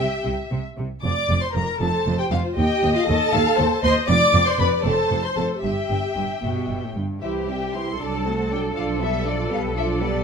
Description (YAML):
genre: quick classical-period movement for string orchestra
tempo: 78 BPM (dotted quarters)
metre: 6/8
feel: straight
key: F major, C major from 4.1 s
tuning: A4 = 440 Hz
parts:
  - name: warm symphonic violin section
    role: melody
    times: 0.0-10.2 s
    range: D5 to D6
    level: -26 LUFS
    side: left 3 dB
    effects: none
  - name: rich symphonic violin section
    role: second line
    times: 0.0-10.2 s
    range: E4 to F5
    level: -28 LUFS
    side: left 4 dB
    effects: none
  - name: dark symphonic viola section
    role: accompaniment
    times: 0.0-10.2 s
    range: E3 to D5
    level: -24 LUFS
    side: right 1 dB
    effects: none
  - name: rich symphonic cello section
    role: bass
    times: 0.0-10.2 s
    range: Eb2 to A4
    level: -26 LUFS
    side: right 1 dB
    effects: none
  - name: warm symphonic double bass section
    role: bass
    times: 0.0-10.2 s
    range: F1 to Eb2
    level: -26 LUFS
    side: right 2 dB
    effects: none
room: light reverb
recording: close, detailed microphones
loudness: -19 LUFS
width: side -6 dB against mid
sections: 0.0-7.2 A section; 7.2-10.2 B section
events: none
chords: 0.0 C; 1.0 F5; 2.6 F9/Eb (rootless); 4.1 F5; 5.6 Em/G; 6.4 G; 7.2 C; 8.0 D7/C; 8.8 G7/B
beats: 0.25 | 1.04 1.81 | 2.58 3.34 | 4.09 4.85 | 5.64 6.43 | 7.23 8.00 | 8.76 9.52